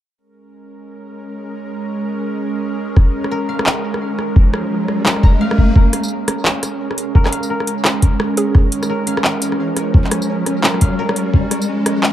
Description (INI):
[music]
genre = half-time drum and bass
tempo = 172 BPM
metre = 4/4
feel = swing 60% on 16ths, half-time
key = Bb minor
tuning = A4 = 439 Hz
[part]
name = bowed-like drone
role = sustained chords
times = 0.7-12.1 s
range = F3 to Bb4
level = -22 LUFS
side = right 2 dB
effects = built-in reverb, sidechain pumping
[part]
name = drum and bass drum kit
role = drums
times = 3.0-12.1 s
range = handclaps, hi-hat, rim click, tambourine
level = -19 LUFS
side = equal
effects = none
[part]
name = electronic kick drum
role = drums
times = 3.0-11.4 s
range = none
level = -10 LUFS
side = equal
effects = none
[part]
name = riser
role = sound effects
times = 4.5-12.1 s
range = none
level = -23 LUFS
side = left 1 dB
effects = none
[part]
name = koto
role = arpeggios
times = 3.3-12.1 s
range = Bb4 to Bb5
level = -27 LUFS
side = left 3 dB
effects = low-pass filter, dub echo
[part]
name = pulsing gated texture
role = texture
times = 5.8-12.1 s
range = Db4 to Db5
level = -26 LUFS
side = right 1 dB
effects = chorus, built-in reverb
[part]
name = hollow square pluck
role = melody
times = 8.4-8.7 s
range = Ab4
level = -26 LUFS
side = right 3 dB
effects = chorus, cassette tape, dub echo
[sound]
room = light reverb, digital ambience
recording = echo-heavy mix, high-pass filter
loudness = -14 LUFS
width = side -12 dB against mid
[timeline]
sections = 0.2-5.8 A section; 5.8-12.1 B section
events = riser 4.5-5.8, 5.8-12.1; build-up 5.8-12.1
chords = 0.2 Bbm7